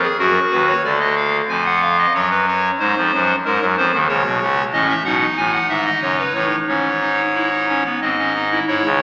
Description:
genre	classical, baroque-style 3-part fugue for pipe organ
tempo	92 BPM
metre	3/4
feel	straight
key	unclear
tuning	A4 = 439 Hz
part	pipe organ, clarinet reed	solo	0.0-9.0 s	F#1 to Ab5	-14 LUFS	equal	none
room	wet concert hall reverb, RT60 1.7 s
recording	heard from further back in the room, small speaker sound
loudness	-14 LUFS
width	side -24 dB against mid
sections	0.8-8.7 A section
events	none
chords	0.2 F#; 0.8 Dm; 2.2 F#sus4; 2.8 G#7; 4.1 Bsus2; 4.7 A; 6.0 D#m7b5/F#; 6.7 G#sus4; 8.0 G#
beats	0.20 | 0.85 1.50 2.16 | 2.81 3.46 4.10 | 4.74 5.38 6.03 | 6.69 7.36 8.02 | 8.69

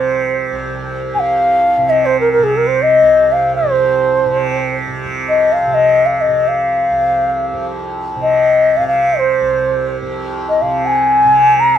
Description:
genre	indian classical, Hindustani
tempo	free time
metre	none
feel	none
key	unclear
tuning	A4 = 437 Hz
part	mellow bansuri	melody	0.0-11.8 s	Ab4 to Bb5+20c	-11 LUFS	left 1 dB	none
part	tanpura	drone	0.0-11.8 s	C2 to C3	-20 LUFS	right 3 dB	none
room	light reverb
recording	minimal, uncompressed stereo recording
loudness	-12 LUFS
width	side -9 dB against mid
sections	0.0-5.0 A section; 5.0-11.8 A section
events	none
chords	none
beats	free time

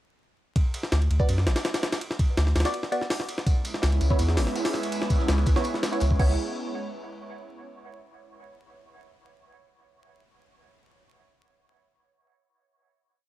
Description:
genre	drum and bass, jungle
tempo	165 BPM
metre	4/4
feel	straight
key	C# phrygian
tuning	A4 = 440 Hz
part	jungle sampler-style drum kit	drums	0.6-6.3 s	crash cymbal, hi-hat, kick drum, ride cymbal, snare drum	-26 LUFS	equal	none
part	soft dub sub bass	bass	0.9-6.4 s	G#1 to F#2	-22 LUFS	equal	tube saturation
part	filtered dub chord stab	stabs	1.2-6.3 s	B3 to D5	-33 LUFS	right 1 dB	phaser, vintage 12-bit sampler grit, dub echo
part	airy breathy pad	sustained chords	3.5-6.4 s	G#3 to E4	-31 LUFS	right 2 dB	chorus, phaser
part	tambourine and snare drum	drums	3.5-6.1 s	none	-40 LUFS	left 2 dB	high-pass filter on snare, high-pass filter on perc, high-pass filter on room
room	little or no reverb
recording	dry, gritty hardware recording, vinyl crackle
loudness	-23 LUFS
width	side -15 dB against mid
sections	0.6-6.4 drop; 6.4-7.8 final hit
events	drop 0.6-6.4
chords	0.6 D6; 3.5 C#m7; 6.4 N.C.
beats	| 0.56 0.92 1.28 1.65 | 2.01 2.38 2.74 3.10 | 3.47 3.83 4.19 4.56 | 4.92 5.29 5.65 6.01

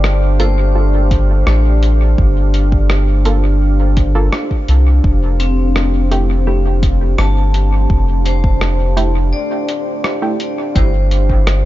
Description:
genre	ambient dub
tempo	84 BPM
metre	4/4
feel	straight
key	unclear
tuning	A4 = 440 Hz
part	deep dark ambient pad	sustained chords	0.0-11.7 s	A3 to F5	-21 LUFS	right 1 dB	chorus, built-in reverb
part	vibraphone with hard mallets	arpeggios	0.0-11.7 s	C4 to A5	-24 LUFS	left 4 dB	tape echo
part	soft dub sub bass	bass	0.0-11.7 s	F1 to C2	-13 LUFS	equal	none
part	lo-fi sampler-style drum kit	drums	0.0-11.6 s	hi-hat, rim click	-23 LUFS	equal	dub echo
part	filtered dub chord stab	stabs	0.4-10.4 s	A3 to A4	-25 LUFS	right 2 dB	chorus, cassette tape, dub echo
part	electronic kick drum	drums	1.1-11.4 s	none	-15 LUFS	equal	none
room	little or no reverb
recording	dark, warm production, nothing above 7.5 kHz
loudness	-11 LUFS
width	side -15 dB against mid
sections	0.0-10.8 A section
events	break 9.3-10.8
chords	0.0 Gm9; 5.0 Fmaj9; 10.8 G7sus2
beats	0.04 0.76 1.47 | 2.18 2.90 3.61 4.33 | 5.04 5.75 6.47 7.18 | 7.90 8.61 9.33 10.04 | 10.76 11.47

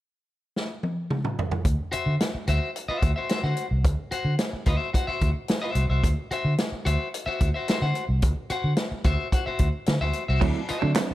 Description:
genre	funk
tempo	110 BPM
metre	4/4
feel	straight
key	D mixolydian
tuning	A4 = 440 Hz
part	vintage drum kit	drums	0.6-11.1 s	crash cymbal, handclaps, hi-hat, kick drum, snare drum, toms	-26 LUFS	equal	none
part	vintage muted fingered electric bass	bass	1.6-11.1 s	C2 to D3	-25 LUFS	equal	none
part	electric guitar at the edge of break-up	accompaniment	1.9-10.9 s	F#4 to F#5	-30 LUFS	left 3 dB	none
part	clean electric guitar	riff	10.4-11.1 s	F#3 to A3	-32 LUFS	right 12 dB	tremolo
part	reed electric piano	stabs	10.4-11.1 s	F#3 to E4	-28 LUFS	right 6 dB	fast tremolo
room	light reverb, studio reverb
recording	none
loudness	-23 LUFS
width	side -15 dB against mid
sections	0.0-1.7 A section; 1.7-10.4 B section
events	drum fill 0.6-1.7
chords	0.0 N.C.; 1.7 D9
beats	0.01 0.56 1.11 | 1.66 2.21 2.75 3.30 | 3.85 4.40 4.95 5.49 | 6.04 6.59 7.14 7.68 | 8.23 8.78 9.32 9.87 | 10.42 10.96

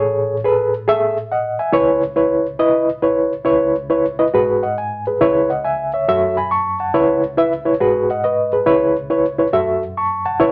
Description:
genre	soul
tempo	138 BPM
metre	4/4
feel	swing 65% on 8ths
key	C# minor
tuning	A4 = 441 Hz
part	reed electric piano	solo	0.0-10.5 s	A1 to C#6	-17 LUFS	equal	fast tremolo
room	moderate studio reverb, RT60 0.7 s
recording	none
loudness	-17 LUFS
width	mono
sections	0.0-3.5 A section; 3.5-10.5 B section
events	none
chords	0.0 Amaj7; 1.7 C#m7; 4.3 G#m7; 5.2 C#m7; 6.1 F#m7; 6.9 C#m7; 7.8 G#m7; 8.7 C#m7; 9.5 F#m7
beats	| 0.02 0.45 0.88 1.31 | 1.75 2.18 2.61 3.04 | 3.48 3.91 4.34 4.77 | 5.21 5.64 6.07 6.51 | 6.94 7.37 7.81 8.24 | 8.67 9.11 9.54 9.97 | 10.41

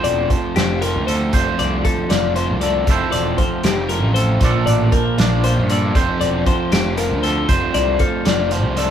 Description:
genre	math rock and midwest emo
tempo	78 BPM (dotted quarters)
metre	6/8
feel	straight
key	F major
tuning	A4 = 440 Hz
part	twangy electric guitar	accompaniment	0.0-8.9 s	F2 to D5	-22 LUFS	right 4 dB	none
part	twelve-string electric guitar	arpeggios	0.0-8.9 s	G4 to D5	-22 LUFS	left 8 dB	none
part	crunchy overdriven guitar	riff	0.0-8.9 s	Bb2 to F4	-24 LUFS	equal	none
part	fuzz picked electric bass	bass	0.0-8.9 s	E1 to G2	-21 LUFS	equal	overdrive
part	loose indie drum kit	drums	0.0-8.9 s	hi-hat, kick drum, snare drum	-20 LUFS	equal	none
room	moderate large studio reverb, RT60 0.8 s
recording	band playing live in one room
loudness	-15 LUFS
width	side -9 dB against mid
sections	0.0-8.9 A section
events	none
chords	0.0 Fmaj9; 1.3 Dm7/F; 2.9 Fmaj9; 4.4 Bbmaj7; 6.0 Fmaj9; 7.5 Dm7/F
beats	0.56 | 1.33 2.11 | 2.88 3.65 | 4.42 5.19 | 5.96 6.72 | 7.49 8.26

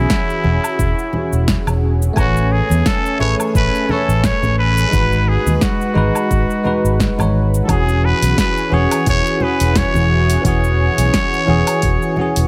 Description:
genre	sunset chillout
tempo	87 BPM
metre	4/4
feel	swing 56% on 16ths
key	E major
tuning	A4 = 440 Hz
part	trumpet with straight mute	melody	0.0-12.5 s	E4 to C#5	-23 LUFS	equal	digital delay
part	lush unison pad	sustained chords	0.0-12.5 s	E3 to G#5	-26 LUFS	equal	chorus
part	fingered electric bass	bass	0.0-12.5 s	E1 to E2	-19 LUFS	equal	none
part	deep house drum kit	drums	0.1-12.5 s	cabasa, hi-hat, snare drum, woodblock	-24 LUFS	equal	overdrive
part	electronic kick drum	drums	0.1-12.0 s	none	-22 LUFS	equal	overdrive
part	congas	percussion	0.4-12.3 s	none	-28 LUFS	equal	none
part	bell-like tine electric piano	accompaniment	2.1-12.5 s	E3 to G#5	-24 LUFS	equal	delay
room	little or no reverb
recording	none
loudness	-16 LUFS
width	mono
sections	0.0-12.5 A section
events	none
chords	0.0 E69; 2.2 Amaj9; 4.9 G#m7; 7.7 E69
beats	0.10 0.79 1.48 | 2.17 2.86 3.55 4.24 | 4.93 5.62 6.31 7.00 | 7.69 8.38 9.07 9.76 | 10.45 11.14 11.83

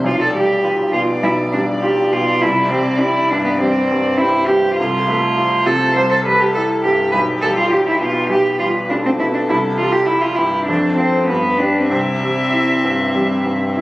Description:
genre	quick classical-period movement for piano trio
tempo	101 BPM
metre	4/4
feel	rubato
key	C major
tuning	A4 = 440 Hz
part	dark violin	melody	0.0-13.8 s	G4 to E5	-24 LUFS	left 2 dB	none
part	bright baby grand piano	accompaniment	0.0-13.8 s	B1 to C5	-19 LUFS	equal	none
part	warm cello	second line	0.1-13.8 s	B3 to C5	-16 LUFS	right 1 dB	none
room	wet scoring stage reverb, RT60 1.6 s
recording	recorded on a phone in the room, club reverb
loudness	-14 LUFS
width	side -18 dB against mid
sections	0.0-13.8 A section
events	none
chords	0.1 G7/B; 2.4 C5; 4.8 F/C; 6.0 C; 7.1 G7/B; 9.5 C; 10.7 F; 11.3 G; 11.9 C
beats	| 0.05 0.64 1.23 1.83 | 2.42 3.01 3.60 4.19 | 4.78 5.37 5.96 6.55 | 7.13 7.72 8.30 8.89 | 9.49 10.08 10.68 11.29 | 11.91 12.53 13.15 13.77

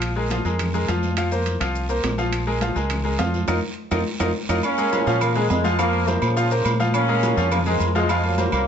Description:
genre	latin, salsa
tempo	208 BPM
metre	4/4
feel	straight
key	Bb minor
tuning	A4 = 441 Hz
part	bright grand piano	accompaniment	0.0-8.6 s	F3 to F5	-24 LUFS	left 2 dB	none
part	deep dub fingered electric bass	bass	0.0-8.7 s	Bb1 to Bb2	-24 LUFS	equal	none
part	claves	percussion	0.0-8.7 s	none	-36 LUFS	left 2 dB	none
part	congas	percussion	0.0-8.5 s	none	-30 LUFS	equal	none
part	guiro	percussion	0.0-8.7 s	none	-38 LUFS	right 4 dB	none
part	maracas	percussion	0.0-8.7 s	none	-42 LUFS	left 6 dB	none
part	timbales and agogo bells	percussion	0.0-8.7 s	none	-29 LUFS	right 5 dB	none
part	mellow trombone section	melody	4.6-8.7 s	C3 to Db4	-23 LUFS	equal	none
room	moderate studio reverb, RT60 0.9 s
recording	nothing above 7.8 kHz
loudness	-19 LUFS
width	side -8 dB against mid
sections	0.0-4.6 A section; 4.6-8.7 B section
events	band accent 3.5-4.6; drum fill 4.1-4.6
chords	0.0 Bb5; 1.2 Fsus4; 2.3 Bbm7; 3.5 F7sus4; 4.6 Bbm7; 5.8 Fsus4; 6.9 Bbm7; 8.1 Fsus4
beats	| 0.02 0.31 0.59 0.88 | 1.17 1.46 1.75 2.04 | 2.33 2.62 2.91 3.19 | 3.48 3.77 4.06 4.35 | 4.64 4.92 5.21 5.50 | 5.79 6.08 6.37 6.65 | 6.94 7.23 7.52 7.80 | 8.09 8.38 8.67

